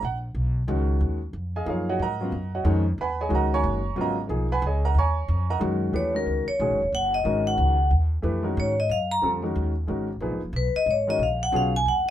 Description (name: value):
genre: modal jazz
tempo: 182 BPM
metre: 3/4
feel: swing 62% on 8ths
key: Eb minor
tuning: A4 = 444 Hz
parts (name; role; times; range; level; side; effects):
- clear grand piano; accompaniment; 0.0-11.7 s; Db3 to Db6; -27 LUFS; right 1 dB; none
- upright bass; bass; 0.0-12.1 s; Eb1 to Ab2; -26 LUFS; equal; none
- vibraphone with medium hard mallets; melody; 6.0-12.1 s; Bb4 to Bb5; -23 LUFS; left 1 dB; none
room: light reverb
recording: minimal, uncompressed stereo recording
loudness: -22 LUFS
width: side -11 dB against mid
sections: 0.0-5.9 A section; 5.9-12.1 A section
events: vibraphone solo 5.9-12.1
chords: 0.0 Ebm11; 9.9 Abm11